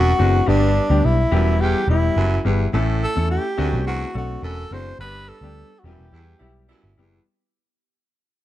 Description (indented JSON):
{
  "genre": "soul",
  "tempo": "106 BPM",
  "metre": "4/4",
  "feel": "straight",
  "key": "unclear",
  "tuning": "A4 = 440 Hz",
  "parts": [
    { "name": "breathy tenor saxophone", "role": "melody", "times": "0.0-6.7 s", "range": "D4 to C5", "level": "-23 LUFS", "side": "equal", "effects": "plate reverb" },
    { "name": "raspy baritone saxophone", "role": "riff", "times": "0.0-7.2 s", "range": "E2 to A2", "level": "-27 LUFS", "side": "right 4 dB", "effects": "none" },
    { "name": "vintage muted picked electric bass", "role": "bass", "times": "0.0-7.2 s", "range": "E1 to E2", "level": "-20 LUFS", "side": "equal", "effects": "none" },
    { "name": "clear concert grand piano", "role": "accompaniment", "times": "0.2-7.2 s", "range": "G3 to A4", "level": "-25 LUFS", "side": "left 6 dB", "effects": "plate reverb" },
    { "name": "warm horn section", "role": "second line", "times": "6.1-7.2 s", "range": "B2 to E4", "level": "-62 LUFS", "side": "right 2 dB", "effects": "none" }
  ],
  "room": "light reverb",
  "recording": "dark, warm production",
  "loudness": "-17 LUFS",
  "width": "side -14 dB against mid",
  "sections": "0.0-7.3 A section",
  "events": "fade-out 0.0-7.3; band accent 5.0-7.3",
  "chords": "0.5 G; 1.3 Em; 2.7 A; 3.6 D7; 5.0 G; 5.8 Em"
}